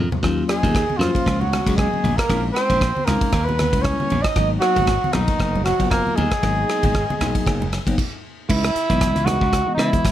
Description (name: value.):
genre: electric jazz fusion.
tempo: 116 BPM.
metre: 4/4.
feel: swing 56% on 16ths.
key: G# dorian.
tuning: A4 = 440 Hz.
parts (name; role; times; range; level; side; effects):
glassy slap bass; bass; 0.0-10.1 s; F#1 to C#3; -22 LUFS; equal; none.
modern studio drum kit; drums; 0.1-10.1 s; crash cymbal, hi-hat, kick drum, ride cymbal, rim click, toms; -23 LUFS; equal; none.
congas; percussion; 0.1-10.0 s; none; -28 LUFS; right 2 dB; none.
mellow tine electric piano; accompaniment; 0.2-10.1 s; E3 to D#5; -26 LUFS; left 4 dB; phaser.
trumpet with bucket mute; melody; 0.5-10.1 s; D#4 to D#5; -23 LUFS; right 1 dB; none.
warm tenor saxophone; second line; 0.5-8.0 s; D#3 to D#4; -27 LUFS; right 2 dB; none.
clean electric guitar; stabs; 8.5-10.0 s; G#3 to B4; -28 LUFS; right 3 dB; analog chorus.
room: light reverb.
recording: none.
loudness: -17 LUFS.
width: side -12 dB against mid.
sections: 0.0-8.5 A section; 8.5-10.1 B section.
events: drum fill 0.0; stop 8.0-8.5.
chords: 0.2 D#m9; 2.3 A#m7b5; 3.3 D#7b9; 4.4 G#m7; 8.5 C#m9.